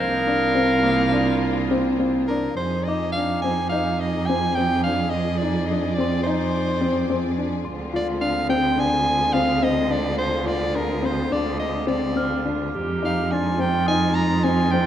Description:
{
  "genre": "contemporary instrumental, chamber music in an uneven meter",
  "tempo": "212 BPM (eighths)",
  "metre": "9/8",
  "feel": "straight",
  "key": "F dorian",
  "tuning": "A4 = 440 Hz",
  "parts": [
    { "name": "clear soprano saxophone", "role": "melody", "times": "0.0-14.9 s", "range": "Bb4 to Bb5", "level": "-25 LUFS", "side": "right 1 dB", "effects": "none" },
    { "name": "bright clarinet", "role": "second line", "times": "0.0-2.3, 12.7-14.9 s", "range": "F4 to Bb4", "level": "-26 LUFS", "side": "left 2 dB", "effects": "none" },
    { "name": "rich studio string section", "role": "sustained chords", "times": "0.0-14.9 s", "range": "C3 to D5", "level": "-30 LUFS", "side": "left 1 dB", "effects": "none" },
    { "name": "warm cello", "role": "bass", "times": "0.0-14.9 s", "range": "C2 to F2", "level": "-25 LUFS", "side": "right 4 dB", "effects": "none" },
    { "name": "crotales", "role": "texture", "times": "0.0-14.9 s", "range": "C6 to Ab6", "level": "-36 LUFS", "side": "right 1 dB", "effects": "none" },
    { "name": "felt-muted upright piano", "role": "arpeggios", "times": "0.3-14.9 s", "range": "Bb3 to F4", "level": "-25 LUFS", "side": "left 4 dB", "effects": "none" }
  ],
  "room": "wet recital hall reverb, RT60 1.6 s",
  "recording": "none",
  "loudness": "-19 LUFS",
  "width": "side -10 dB against mid",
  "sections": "0.0-2.6 A section; 2.6-14.9 B section",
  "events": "none",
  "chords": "0.0 C9sus4; 2.6 Fm7; 7.7 Dm7b5; 12.8 Fm7"
}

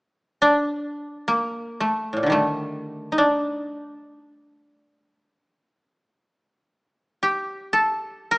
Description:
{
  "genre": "japanese traditional",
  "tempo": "free time",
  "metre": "none",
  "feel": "none",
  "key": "D miyako bushi",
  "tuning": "A4 = 440 Hz",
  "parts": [
    { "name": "koto", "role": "melody", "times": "0.4-8.4 s", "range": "A2 to Bb4", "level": "-21 LUFS", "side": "equal", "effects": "none" }
  ],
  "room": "moderate recital hall reverb, RT60 1.7 s",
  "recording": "small speaker sound",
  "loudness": "-21 LUFS",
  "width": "side -32 dB against mid",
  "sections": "0.0-8.4 A section",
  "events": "none",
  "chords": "none"
}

